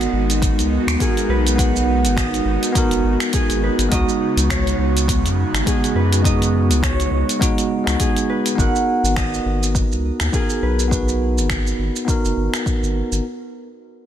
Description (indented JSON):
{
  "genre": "sunset chillout",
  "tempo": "103 BPM",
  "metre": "4/4",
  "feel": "swing 57% on 16ths",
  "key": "G# minor",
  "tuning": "A4 = 436 Hz",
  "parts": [
    { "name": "bell-like tine electric piano", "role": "accompaniment", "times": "0.0-13.3 s", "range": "G#3 to B4", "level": "-22 LUFS", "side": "right 1 dB", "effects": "auto-pan, low-pass filter, tape echo" },
    { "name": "airy breathy pad", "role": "sustained chords", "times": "0.0-8.5 s", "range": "C#3 to F#4", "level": "-24 LUFS", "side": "right 3 dB", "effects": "chorus" },
    { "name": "concert harp", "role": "arpeggios", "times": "0.0-12.7 s", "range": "G#4 to F#5", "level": "-26 LUFS", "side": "equal", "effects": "tape echo" },
    { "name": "round analog bass", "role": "bass", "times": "0.0-13.2 s", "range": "F#1 to F#2", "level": "-20 LUFS", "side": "equal", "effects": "none" },
    { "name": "deep house drum kit", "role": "drums", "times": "0.0-13.2 s", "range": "finger snaps, hi-hat, shaker", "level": "-25 LUFS", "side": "right 1 dB", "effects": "soft clipping on snare" },
    { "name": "electronic kick drum", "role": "drums", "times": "0.4-12.8 s", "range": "none", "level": "-22 LUFS", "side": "equal", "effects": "none" }
  ],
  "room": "moderate plate reverb, RT60 1.7 s, digital ambience",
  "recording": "dense, heavily limited modern master",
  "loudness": "-16 LUFS",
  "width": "side -10 dB against mid",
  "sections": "0.0-8.6 A section; 8.6-13.2 B section",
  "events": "none",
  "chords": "0.0 G#m7; 3.9 C#9sus4; 8.6 G#m7"
}